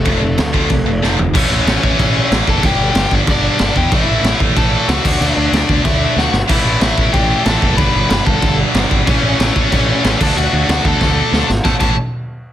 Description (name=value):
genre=punk rock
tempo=186 BPM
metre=4/4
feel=straight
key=A mixolydian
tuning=A4 = 441 Hz
part: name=biting overdriven guitar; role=melody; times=0.0-12.0 s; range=A3 to B5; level=-19 LUFS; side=left 3 dB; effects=none
part: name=tight distorted guitar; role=riff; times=0.0-11.9 s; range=F2 to D4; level=-17 LUFS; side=equal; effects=distortion
part: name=fuzz picked electric bass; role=bass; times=0.0-12.0 s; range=F1 to E2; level=-18 LUFS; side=equal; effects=overdrive
part: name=raw garage drum kit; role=drums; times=0.1-11.9 s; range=crash cymbal, kick drum, snare drum, toms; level=-16 LUFS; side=equal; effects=none
room=little or no reverb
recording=dense, heavily limited modern master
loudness=-12 LUFS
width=side -11 dB against mid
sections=0.0-1.3 A section; 1.3-11.6 B section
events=drum fill 1.0-1.3, 6.2-6.5, 11.0-11.6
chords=0.0 F; 1.3 A; 2.6 G5; 3.9 A5; 5.0 D; 6.5 A5; 7.8 G; 9.1 A; 10.2 D; 11.6 A5